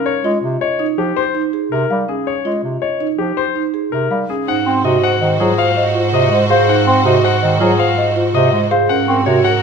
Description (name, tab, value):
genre	classical, minimalist pattern music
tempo	163 BPM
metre	6/4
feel	straight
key	Ab mixolydian from 4.5 s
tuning	A4 = 440 Hz
part	bright concert grand piano	melody	0.0-9.6 s	G4 to Gb5	-19 LUFS	left 10 dB	none
part	marimba with medium mallets	arpeggios	0.0-9.5 s	Db4 to C5	-19 LUFS	right 4 dB	none
part	warm bass clarinet	accompaniment	0.2-9.4 s	C3 to C4	-20 LUFS	right 2 dB	none
part	celesta	arpeggios	0.6-9.3 s	Eb5 to Db6	-22 LUFS	left 1 dB	none
part	mellow hollow alto flute	second line	4.5-9.6 s	Bb4 to C5	-22 LUFS	equal	none
part	clear studio string section	sustained chords	4.5-9.6 s	Gb4 to C5	-22 LUFS	right 1 dB	none
part	clear double bass	bass	4.5-9.6 s	Ab2	-20 LUFS	right 5 dB	none
room	moderate recital hall reverb, RT60 1.3 s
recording	none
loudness	-13 LUFS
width	side -6 dB against mid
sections	0.0-4.5 A section; 4.5-9.6 B section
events	none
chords	0.1 Bbm11 (rootless); 4.5 Ab7; 8.9 Gb/Ab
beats	| 0.06 0.43 0.80 1.17 1.53 1.90 | 2.27 2.64 3.01 3.38 3.74 4.11 | 4.48 4.85 5.21 5.58 5.95 6.32 | 6.69 7.06 7.42 7.79 8.16 8.53 | 8.90 9.26